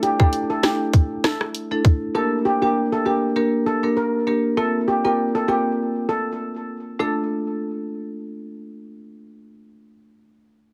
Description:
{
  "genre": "dancehall",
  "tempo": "99 BPM",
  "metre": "4/4",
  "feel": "swing 56% on 16ths",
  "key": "D minor",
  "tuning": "A4 = 441 Hz",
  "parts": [
    { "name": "steel pan", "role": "melody", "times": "0.0-8.8 s", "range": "G4 to Bb4", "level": "-26 LUFS", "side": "equal", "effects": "digital delay" },
    { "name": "marimba with medium mallets", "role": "accompaniment", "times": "0.0-10.1 s", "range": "A3 to Bb4", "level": "-25 LUFS", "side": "equal", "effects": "none" },
    { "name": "island pop drum kit", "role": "drums", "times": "0.0-2.0 s", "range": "hi-hat, kick drum, rim click, snare drum", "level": "-19 LUFS", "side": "equal", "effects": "none" }
  ],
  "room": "light reverb",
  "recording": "heavily compressed radio sound, multiband compression",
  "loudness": "-21 LUFS",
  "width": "mono",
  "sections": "0.0-7.0 A section; 7.0-9.4 B section",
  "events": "none",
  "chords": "0.0 Asus4; 2.1 Gm; 4.6 Bbsus2; 7.0 Dm"
}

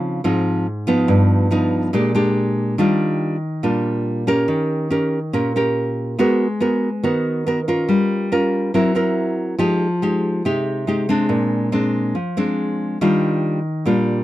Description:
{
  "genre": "bossa nova",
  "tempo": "141 BPM",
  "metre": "4/4",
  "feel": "straight",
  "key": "Eb major",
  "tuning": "A4 = 444 Hz",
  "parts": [
    { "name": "nylon-string guitar", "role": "solo", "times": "0.0-14.2 s", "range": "G2 to Bb4", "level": "-17 LUFS", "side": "equal", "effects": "none" }
  ],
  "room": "light reverb",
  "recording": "dry, close 1970s-style studio recording",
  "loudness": "-17 LUFS",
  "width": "side -15 dB against mid",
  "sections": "0.0-2.8 A section; 2.8-14.2 B section",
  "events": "none",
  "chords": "0.0 Dbmaj9; 1.1 Gaug7; 1.9 Bb6; 2.8 Ebmaj9; 4.5 Eb7; 6.2 Abm9; 7.9 Gm7b5; 8.7 Gb7#11; 9.6 Fm9; 11.3 Bb9; 13.0 Ebmaj9"
}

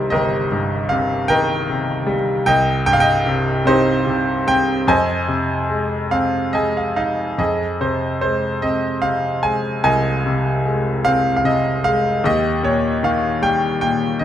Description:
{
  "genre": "classical, lyrical solo piano",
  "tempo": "50 BPM (dotted quarters)",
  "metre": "6/8",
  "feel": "rubato",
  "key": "F minor",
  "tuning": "A4 = 444 Hz",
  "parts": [
    { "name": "bright grand piano", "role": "solo", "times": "0.0-14.2 s", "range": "G1 to Ab5", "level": "-16 LUFS", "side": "equal", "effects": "none" }
  ],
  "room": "moderate recital hall reverb, RT60 1.4 s",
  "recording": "none",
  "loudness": "-16 LUFS",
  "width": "side -10 dB against mid",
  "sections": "0.0-7.4 A section; 7.4-14.2 B section",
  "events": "grand piano fill 6.1-7.4",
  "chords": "0.0 Cm7; 2.5 Cmadd11; 4.9 Fm7; 12.2 Eb"
}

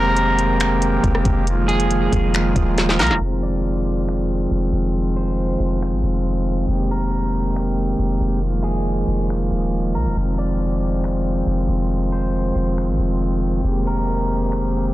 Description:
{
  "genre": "hip hop, atmospheric cloud-rap",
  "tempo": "138 BPM",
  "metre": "4/4",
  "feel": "half-time",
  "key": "F dorian",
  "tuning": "A4 = 440 Hz",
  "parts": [
    { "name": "electric guitar at the edge of break-up", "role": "melody", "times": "0.0-14.9 s", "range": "Ab4 to D5", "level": "-27 LUFS", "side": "right 2 dB", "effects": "spring reverb, digital delay" },
    { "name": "pipe organ, foundations", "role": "sustained chords", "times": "0.0-14.9 s", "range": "Eb3 to G4", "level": "-21 LUFS", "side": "right 1 dB", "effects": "sidechain pumping" },
    { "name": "long sustained 808-style bass", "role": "bass", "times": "0.0-14.9 s", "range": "Eb1 to C2", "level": "-21 LUFS", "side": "equal", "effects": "none" },
    { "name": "smooth R&B drum kit", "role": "drums", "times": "0.2-14.6 s", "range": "finger snaps, hi-hat, kick drum, rim click, snare drum", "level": "-22 LUFS", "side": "equal", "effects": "soft clipping on snare" }
  ],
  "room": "little or no reverb",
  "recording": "blown-out, overdriven recording, overdrive, low-pass filter",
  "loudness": "-18 LUFS",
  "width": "side -16 dB against mid",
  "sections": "0.0-3.2 A section; 3.2-14.9 B section",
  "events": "drum fill 2.8-3.2",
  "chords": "0.0 Abmaj9/F; 1.5 Bb7sus4/F; 3.2 Fm7; 6.7 Abmaj9/F; 8.4 Bb7sus4/F; 10.2 Fm7; 13.6 Abmaj9/F"
}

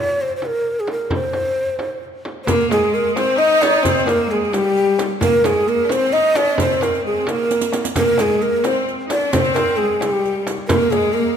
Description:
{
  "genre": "Persian modal ensemble",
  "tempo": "88 BPM (dotted quarters)",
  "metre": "6/8",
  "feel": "straight",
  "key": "C dastgah shur",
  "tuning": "A4 = 443 Hz",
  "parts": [
    { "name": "breathy mellow ney", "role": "melody", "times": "0.0-11.4 s", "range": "G4 to Eb5", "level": "-18 LUFS", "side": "equal", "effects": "none" },
    { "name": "tombak", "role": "percussion", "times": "0.2-11.2 s", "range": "none", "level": "-28 LUFS", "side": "left 2 dB", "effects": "none" },
    { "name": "frame drum", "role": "percussion", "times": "0.4-10.8 s", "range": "none", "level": "-26 LUFS", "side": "right 2 dB", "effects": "none" },
    { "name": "bright chamber cello section", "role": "second line", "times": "2.5-11.4 s", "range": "G3 to Eb4", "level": "-21 LUFS", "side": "equal", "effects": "none" },
    { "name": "riq", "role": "percussion", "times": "2.5-11.2 s", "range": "none", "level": "-31 LUFS", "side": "right 6 dB", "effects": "none" }
  ],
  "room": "wet concert hall reverb, RT60 2.1 s",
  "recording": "minimal, uncompressed stereo recording",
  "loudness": "-15 LUFS",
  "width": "side -8 dB against mid",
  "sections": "0.0-2.5 A section; 2.5-11.4 B section",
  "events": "drum fill 7.5-8.0",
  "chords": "none"
}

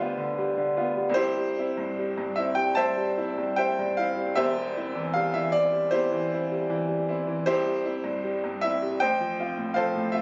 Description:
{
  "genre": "classical, romantic character piece for solo piano",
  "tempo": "77 BPM",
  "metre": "4/4",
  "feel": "rubato",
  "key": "C major",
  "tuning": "A4 = 440 Hz",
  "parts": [
    { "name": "bright upright piano", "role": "solo", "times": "0.0-10.2 s", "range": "E1 to A5", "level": "-27 LUFS", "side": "equal", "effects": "none" }
  ],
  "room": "moderate large studio reverb, RT60 1.1 s",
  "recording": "recorded on a phone in the room, studio reverb, compression, nothing above 7.8 kHz",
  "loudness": "-27 LUFS",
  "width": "mono",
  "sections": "0.0-10.2 A section",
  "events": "none",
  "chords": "0.0 G7/D; 1.2 C; 4.4 C/E; 7.5 C; 9.0 F/A"
}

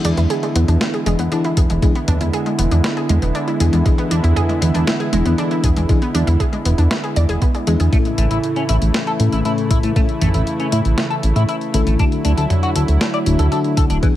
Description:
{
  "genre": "synthwave",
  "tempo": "118 BPM",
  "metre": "4/4",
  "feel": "straight",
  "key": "unclear",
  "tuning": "A4 = 440 Hz",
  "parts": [
    { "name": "warm analog pad", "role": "sustained chords", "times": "0.0-14.2 s", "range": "C#3 to E4", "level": "-22 LUFS", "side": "right 2 dB", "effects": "chorus, sidechain pumping" },
    { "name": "analog pluck", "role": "arpeggios", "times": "0.0-7.9 s", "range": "G#3 to D5", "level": "-24 LUFS", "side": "right 2 dB", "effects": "chorus, ping-pong delay" },
    { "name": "mellow FM electric piano", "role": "stabs", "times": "0.0-14.1 s", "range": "A2 to A4", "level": "-22 LUFS", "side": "left 4 dB", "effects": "chorus, ping-pong delay" },
    { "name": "chorused synth bass", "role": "bass", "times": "0.0-14.0 s", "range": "D1 to A2", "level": "-16 LUFS", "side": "equal", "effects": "tube saturation, sidechain pumping" },
    { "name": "clean 12-bit digital drum machine", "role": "drums", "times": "0.0-14.1 s", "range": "hi-hat, snare drum, toms", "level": "-24 LUFS", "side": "equal", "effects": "none" },
    { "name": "electronic kick drum", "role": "drums", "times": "1.6-14.1 s", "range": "none", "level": "-16 LUFS", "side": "equal", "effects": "none" },
    { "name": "semi-hollow electric guitar", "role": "riff", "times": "7.9-14.1 s", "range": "E3 to D5", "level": "-25 LUFS", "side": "left 2 dB", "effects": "analog chorus, ping-pong delay" }
  ],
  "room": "light reverb",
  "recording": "none",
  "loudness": "-14 LUFS",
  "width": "side -13 dB against mid",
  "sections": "0.0-14.2 A section",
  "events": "none",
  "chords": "0.0 E7; 7.9 A; 12.0 Dadd9"
}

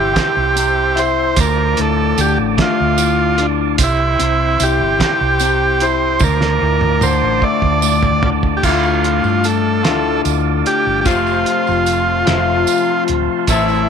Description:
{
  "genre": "psychedelic rock",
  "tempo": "50 BPM (dotted quarters)",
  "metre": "6/8",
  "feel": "straight",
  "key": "D minor",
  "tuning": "A4 = 440 Hz",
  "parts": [
    { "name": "combo organ", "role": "melody", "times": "0.0-13.9 s", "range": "E4 to D5", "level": "-17 LUFS", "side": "right 2 dB", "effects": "tape echo" },
    { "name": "tonewheel organ", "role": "sustained chords", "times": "0.0-13.9 s", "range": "E4 to D6", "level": "-24 LUFS", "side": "right 15 dB", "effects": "overdrive, fast rotary speaker" },
    { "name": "electric guitar through a small old amp", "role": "riff", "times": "0.0-13.9 s", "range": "D2 to A4", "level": "-19 LUFS", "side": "left 13 dB", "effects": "phaser" },
    { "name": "hollow-body short-scale fingered electric bass", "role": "bass", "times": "0.0-13.9 s", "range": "D1 to G2", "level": "-20 LUFS", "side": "right 2 dB", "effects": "none" },
    { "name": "cloth-damped thuddy drum kit", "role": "drums", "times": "0.2-13.7 s", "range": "crash cymbal, hi-hat, kick drum, snare drum, toms", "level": "-19 LUFS", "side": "right 2 dB", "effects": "none" },
    { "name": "tambourine", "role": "percussion", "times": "0.6-13.8 s", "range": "none", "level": "-27 LUFS", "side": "right 19 dB", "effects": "none" }
  ],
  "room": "light reverb, studio reverb",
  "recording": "1960s-style stereo with parts hard left and right",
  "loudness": "-13 LUFS",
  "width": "side -7 dB against mid",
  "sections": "0.0-8.6 A section; 8.6-13.9 B section",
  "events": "drum fill 6.2-8.6",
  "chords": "0.0 C; 1.4 Dm; 3.8 C; 6.2 Dm; 11.1 F"
}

